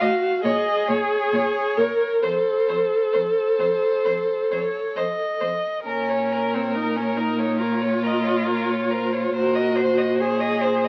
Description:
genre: classical, slow romantic movement for string quartet.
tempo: 65-72 BPM.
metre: 4/4.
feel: rubato.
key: Bb minor.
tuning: A4 = 440 Hz.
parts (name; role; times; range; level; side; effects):
rich violin; melody; 0.0-10.9 s; Bb4 to Eb5; -29 LUFS; equal; none.
dark violin; second line; 0.0-10.9 s; Bb4 to F5; -29 LUFS; equal; none.
warm viola; accompaniment; 0.0-10.9 s; C4 to Bb4; -25 LUFS; equal; none.
rich cello; bass; 0.0-10.9 s; F2 to Bb2; -29 LUFS; equal; none.
room: moderate stone room reverb, RT60 1.1 s.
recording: very old 78 rpm record, vinyl crackle.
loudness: -22 LUFS.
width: mono.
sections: 0.0-10.9 A section.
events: none.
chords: 0.4 Bbm; 2.2 F; 5.9 Bbm; 9.3 Cm7b5/Bb.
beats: 0.43 1.32 | 2.22 3.12 4.04 4.95 | 5.85 6.74 7.59 8.47 | 9.35 10.20.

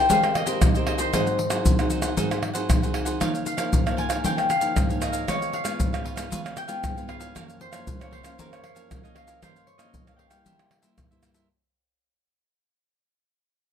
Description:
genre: samba and choro.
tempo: 116 BPM.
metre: 4/4.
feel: straight.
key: unclear.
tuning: A4 = 440 Hz.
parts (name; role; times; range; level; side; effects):
Celtic harp; melody; 0.0-11.9 s; Bb4 to Ab5; -26 LUFS; left 3 dB; none.
cavaquinho; accompaniment; 0.0-11.5 s; Eb4 to G5; -33 LUFS; right 7 dB; none.
nylon-string guitar; accompaniment; 0.0-11.5 s; Gb2 to Bb4; -31 LUFS; left 2 dB; none.
maracas, surdo, pandeiro and tamborim; percussion; 0.1-11.5 s; none; -24 LUFS; equal; none.
room: light reverb.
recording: close, detailed microphones.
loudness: -22 LUFS.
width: side -8 dB against mid.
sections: 0.0-11.5 A section.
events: fade-out 0.0-11.5.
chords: 0.0 Abmaj9; 1.1 Ab7; 3.2 Db69; 5.3 Db7; 7.4 Gbmaj7; 9.4 Gm7b5; 10.5 C7.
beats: 0.10 0.62 | 1.14 1.65 2.17 2.69 | 3.21 3.73 4.25 4.76 | 5.28 5.80 6.32 6.84 | 7.35 7.87 8.39 8.91 | 9.43 9.94 10.46 10.98.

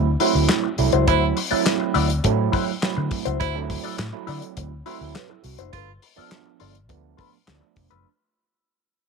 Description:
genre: funk.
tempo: 103 BPM.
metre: 4/4.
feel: straight.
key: D mixolydian.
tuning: A4 = 440 Hz.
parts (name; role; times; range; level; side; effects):
overdriven tine electric piano; stabs; 0.0-8.1 s; F3 to B4; -25 LUFS; right 13 dB; lush chorus.
vintage muted fingered electric bass; bass; 0.0-8.0 s; F1 to D3; -24 LUFS; left 1 dB; none.
mellow electric guitar; accompaniment; 0.2-8.1 s; E4 to D5; -26 LUFS; left 14 dB; wah.
damped 70s drum kit; drums; 0.2-8.0 s; handclaps, hi-hat, kick drum, snare drum; -25 LUFS; left 2 dB; none.
breathy baritone saxophone; second line; 1.1-5.9 s; E4 to F4; -27 LUFS; right 11 dB; none.
room: light reverb, studio reverb.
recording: 1960s-style stereo with parts hard left and right.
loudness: -19 LUFS.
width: side -4 dB against mid.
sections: 0.0-8.1 A section.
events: fade-out 0.0-8.1.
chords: 0.0 D9; 5.7 G9.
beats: 0.49 | 1.08 1.66 2.24 2.82 | 3.40 3.99 4.57 5.15 | 5.73 6.31 6.89 7.48.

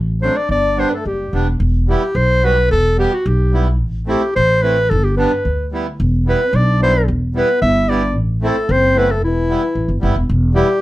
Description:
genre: klezmer.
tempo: 110 BPM.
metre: 2/4.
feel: straight.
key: E minor.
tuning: A4 = 440 Hz.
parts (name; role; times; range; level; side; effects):
upright bass; bass; 0.0-10.6 s; E1 to D2; -16 LUFS; equal; none.
warm clarinet; melody; 0.2-10.8 s; E4 to E5; -17 LUFS; equal; none.
trombone with cup mute; second line; 0.2-1.5, 6.3-10.8 s; E3 to E4; -23 LUFS; left 3 dB; none.
accordion; accompaniment; 0.2-10.7 s; F#3 to G4; -21 LUFS; right 2 dB; none.
room: light reverb.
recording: dark, warm production.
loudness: -13 LUFS.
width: side -16 dB against mid.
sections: 0.0-1.6 A section; 1.6-10.3 B section.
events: speeding up 0.0-10.8.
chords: 0.5 G; 1.6 Em; 3.8 Am; 4.9 G; 6.0 Em; 8.2 Am; 9.2 Em.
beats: | 0.50 1.05 | 1.61 2.16 | 2.72 3.27 | 3.82 4.37 | 4.91 5.46 | 6.00 6.54 | 7.08 7.62 | 8.16 8.69 | 9.22 9.75 | 10.28 10.81.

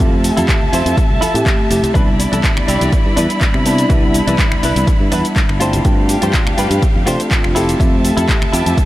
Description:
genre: filtered disco house.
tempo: 123 BPM.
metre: 4/4.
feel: straight.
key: C major.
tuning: A4 = 440 Hz.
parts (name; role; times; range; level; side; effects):
mellow tine electric piano; accompaniment; 0.0-8.9 s; G3 to E5; -19 LUFS; equal; phaser, sidechain pumping, low-pass filter.
dark studio violin section; sustained chords; 0.0-8.9 s; E4 to B5; -22 LUFS; left 1 dB; sidechain pumping, low-pass filter.
direct-recorded clean electric guitar; riff; 0.0-8.8 s; D4 to C5; -23 LUFS; equal; analog chorus, sidechain pumping, low-pass filter.
modern bright fingered electric bass; bass; 0.0-8.7 s; F1 to C3; -18 LUFS; equal; sidechain pumping, low-pass filter.
electronic kick drum; drums; 0.0-8.9 s; none; -15 LUFS; equal; none.
punchy analog drum machine; drums; 0.0-8.9 s; cabasa, finger snaps, handclaps, hi-hat; -22 LUFS; equal; sidechain pumping on hats, sidechain pumping on perc.
tambourine and congas; percussion; 0.1-8.9 s; none; -28 LUFS; left 1 dB; none.
room: light reverb, digital ambience.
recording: none.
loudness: -12 LUFS.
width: side -16 dB against mid.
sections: 0.0-8.9 A section.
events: none.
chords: 0.0 Fmaj7; 1.9 Cmaj9; 5.6 G7sus4; 7.6 Fmaj7.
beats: | 0.00 0.49 0.97 1.46 | 1.95 2.44 2.93 3.41 | 3.90 4.39 4.88 5.37 | 5.85 6.34 6.83 7.32 | 7.80 8.29 8.78.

